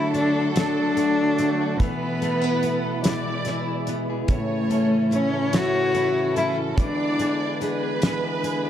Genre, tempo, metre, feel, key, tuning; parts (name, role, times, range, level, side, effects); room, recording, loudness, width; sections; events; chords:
six-eight pop ballad; 48 BPM (dotted quarters); 6/8; straight; A4 = 441 Hz
warm cello; melody; 0.0-7.7 s; A3 to F#4; -23 LUFS; left 1 dB; analog delay
warm symphonic violin section; second line; 0.0-8.7 s; A4 to D5; -30 LUFS; right 2 dB
picked steel-string acoustic guitar; accompaniment; 0.0-8.7 s; A2 to G#4; -29 LUFS; equal; double-tracked left and right
tonewheel organ; sustained chords; 0.0-8.7 s; B2 to F#4; -30 LUFS; right 2 dB; slow rotary speaker
direct-recorded clean electric guitar; arpeggios; 0.0-8.7 s; E3 to A4; -34 LUFS; left 12 dB; analog delay
damped 70s drum kit; drums; 0.1-8.6 s; hi-hat, kick drum, snare drum; -24 LUFS; equal
light reverb, studio ambience; dark, warm production; -20 LUFS; side -10 dB against mid
0.0-8.7 A section
0.0 D; 1.8 Esus4; 3.0 E; 4.3 A; 6.8 E7